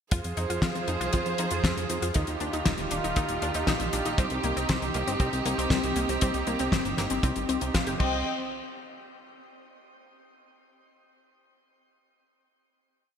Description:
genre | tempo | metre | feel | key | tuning
italo disco | 118 BPM | 4/4 | straight | C minor | A4 = 440 Hz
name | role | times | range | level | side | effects
dark chamber string section | sustained chords | 0.1-8.2 s | Eb3 to G5 | -30 LUFS | right 2 dB | shimmer reverb
analog pluck | arpeggios | 0.1-8.2 s | C3 to G4 | -33 LUFS | left 3 dB | chorus, digital delay, shimmer reverb
chorused synth bass | bass | 0.1-8.2 s | Eb1 to F2 | -33 LUFS | equal | digital delay
damped 70s drum kit | drums | 0.1-8.1 s | crash cymbal, hi-hat, snare drum | -32 LUFS | left 2 dB | studio reverb, gated reverb
kick drum | drums | 0.1-8.1 s | none | -26 LUFS | equal | studio reverb
room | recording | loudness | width
wet lush hall reverb, RT60 1.9 s, small room ambience | bright 1980s-style digital production | -25 LUFS | side -8 dB against mid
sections
0.1-8.3 verse; 8.3-10.3 final hit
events
none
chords
0.1 Fm; 2.2 Ebadd9; 4.2 Cm; 8.3 N.C.

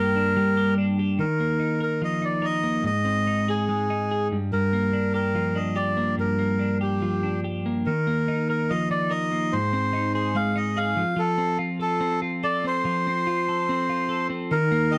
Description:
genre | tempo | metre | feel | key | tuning
indie pop | 144 BPM | 4/4 | straight | unclear | A4 = 440 Hz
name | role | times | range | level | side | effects
melodica | melody | 0.0-15.0 s | G4 to F5 | -28 LUFS | equal | none
twelve-string electric guitar | arpeggios | 0.0-15.0 s | G2 to Bb4 | -27 LUFS | equal | warbly pitch drift
room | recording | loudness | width
small room ambience | dry, close 1970s-style studio recording | -24 LUFS | mono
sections
0.0-1.2 A section; 1.2-14.5 B section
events
none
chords
0.0 Gm; 1.2 Ebsus2; 2.9 Ab; 4.3 Gm7; 7.9 Ebsus2; 9.5 Ab; 11.0 F

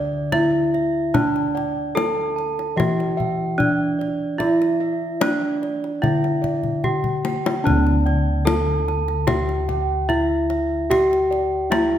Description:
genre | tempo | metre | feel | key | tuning
Javanese gamelan | 74 BPM | 4/4 | straight | unclear | A4 = 438 Hz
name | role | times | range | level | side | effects
gamelan-type bronze metallophone | melody | 0.0-12.0 s | D4 to A4+25c | -22 LUFS | equal | none
gamelan-type bossed gongs | arpeggios | 0.0-12.0 s | D5 to A5+25c | -30 LUFS | left 1 dB | slapback echo
gamelan-type bronze metallophone | arpeggios | 0.0-12.0 s | D5 to A5+25c | -28 LUFS | right 6 dB | none
gamelan-type bossed gongs | bass | 0.0-12.0 s | D2 to G4-35c | -23 LUFS | equal | none
kendang | percussion | 0.3-11.9 s | none | -26 LUFS | left 4 dB | none
room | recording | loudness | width
moderate scoring stage reverb, RT60 1.5 s | none | -18 LUFS | side -10 dB against mid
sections
0.0-12.0 A section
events
drum fill 6.6-7.7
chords
none

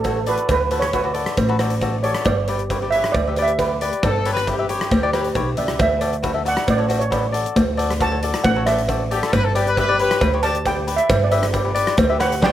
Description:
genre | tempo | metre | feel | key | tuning
calypso | 136 BPM | 4/4 | straight | D major | A4 = 441 Hz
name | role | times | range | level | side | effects
steel pan | melody | 0.0-12.5 s | A4 to A5 | -22 LUFS | right 4 dB | slapback echo
cavaquinho | accompaniment | 0.0-12.5 s | F#4 to E5 | -24 LUFS | left 5 dB | slapback echo
upright bass | bass | 0.0-12.5 s | G1 to D2 | -23 LUFS | equal | none
gated 80s drum kit | drums | 0.0-12.5 s | hi-hat, kick drum, rim click, snare drum | -25 LUFS | left 1 dB | none
cowbell | percussion | 0.0-12.5 s | none | -24 LUFS | right 4 dB | slapback echo
clear horn section | second line | 4.0-5.3, 9.1-10.3 s | G4 to B4 | -22 LUFS | left 3 dB | none
room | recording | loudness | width
little or no reverb | none | -17 LUFS | side -12 dB against mid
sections
0.0-12.5 A section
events
steel pan solo 0.0-12.5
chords
0.0 D; 2.3 G; 5.8 Dadd9; 9.3 G

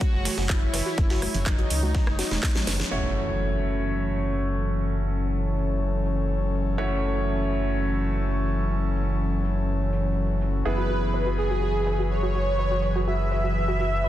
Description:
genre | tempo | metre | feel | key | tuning
progressive house | 124 BPM | 4/4 | straight | F# minor | A4 = 440 Hz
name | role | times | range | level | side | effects
soft supersaw | melody | 0.0-2.8, 10.7-14.1 s | D#4 to E5 | -29 LUFS | equal | cassette tape, sidechain pumping, ping-pong delay
airy breathy pad | sustained chords | 0.0-14.1 s | E3 to C#5 | -30 LUFS | left 2 dB | chorus, sidechain pumping
soft round pluck | arpeggios | 0.0-2.7, 10.8-14.1 s | F#3 to B4 | -34 LUFS | equal | wide subtle chorus, cassette tape, sidechain pumping, ping-pong delay
dusty soul sampler-style drum kit | drums | 0.0-2.8 s | hi-hat, snare drum | -36 LUFS | right 2 dB | overdrive, sidechain pumping on hats, high-pass filter on hats, high-pass filter on snare
electronic kick drum | drums | 0.0-2.5 s | none | -23 LUFS | equal | none
round analog bass | bass | 0.1-14.1 s | E1 to C#2 | -26 LUFS | equal | sidechain pumping
congas | percussion | 0.2-2.9 s | none | -36 LUFS | right 4 dB | sidechain pumping on perc
house drum kit | drums | 0.3-13.9 s | handclaps, hi-hat, rim click, snare drum | -31 LUFS | right 1 dB | low-pass filter on snare, low-pass filter on hats, low-pass filter on room
clear concert grand piano | stabs | 2.9-14.1 s | A3 to C#5 | -31 LUFS | right 2 dB | sidechain pumping, ping-pong delay
impact | sound effects | 2.9-4.8 s | none | -33 LUFS | equal | none
room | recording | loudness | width
light reverb | dense, heavily limited modern master | -23 LUFS | side -13 dB against mid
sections
0.0-2.9 A section; 2.9-14.1 B section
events
drum fill 2.2-2.9; band accent 2.8; impact 2.9-4.8; filter sweep on analog synth pad 2.9-14.1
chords
0.0 E; 2.9 F#m7; 10.7 E/F#

